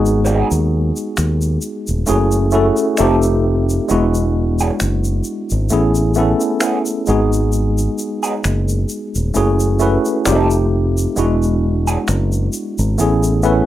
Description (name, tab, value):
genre	R&B, neo-soul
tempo	66 BPM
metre	4/4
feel	swing 55% on 16ths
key	unclear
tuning	A4 = 440 Hz
part	tine electric piano	accompaniment	0.0-13.7 s	G3 to B4	-17 LUFS	equal	fast stereo tremolo
part	fingered electric bass	bass	0.0-13.6 s	D#1 to D#2	-17 LUFS	equal	none
part	tube shaker and finger snaps	percussion	0.1-13.7 s	none	-25 LUFS	left 1 dB	none
part	electric guitar through a small old amp	second line	0.2-12.0 s	E3 to A4	-21 LUFS	right 4 dB	wah
room	moderate studio reverb, RT60 0.5 s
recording	rough home demo mix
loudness	-14 LUFS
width	side -13 dB against mid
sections	0.0-13.7 A section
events	none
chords	0.0 G#m7; 2.1 F#m9; 3.0 F9; 3.9 E9; 5.7 Amaj9; 7.1 G#m7; 9.3 F#m9; 10.3 F9; 11.2 E9; 13.0 Amaj9